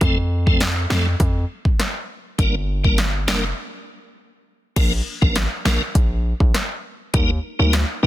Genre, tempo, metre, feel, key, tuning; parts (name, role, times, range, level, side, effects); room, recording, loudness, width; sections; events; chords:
dancehall; 101 BPM; 4/4; straight; Bb major; A4 = 440 Hz
tonewheel organ; accompaniment; 0.0-8.1 s; F3 to Bb4; -24 LUFS; equal; overdrive, chorus vibrato, fast rotary speaker
hard-hitting 808-style bass; bass; 0.0-8.1 s; F1 to F2; -20 LUFS; equal
deep house drum kit; drums; 0.0-7.9 s; crash cymbal, hi-hat, kick drum, rim click, snare drum; -20 LUFS; equal
little or no reverb; dense, heavily limited modern master; -17 LUFS; side -14 dB against mid
0.0-4.8 A section; 4.8-8.1 B section
break 3.6-4.8
0.0 F; 2.4 Gm; 4.8 Bb; 7.1 Eb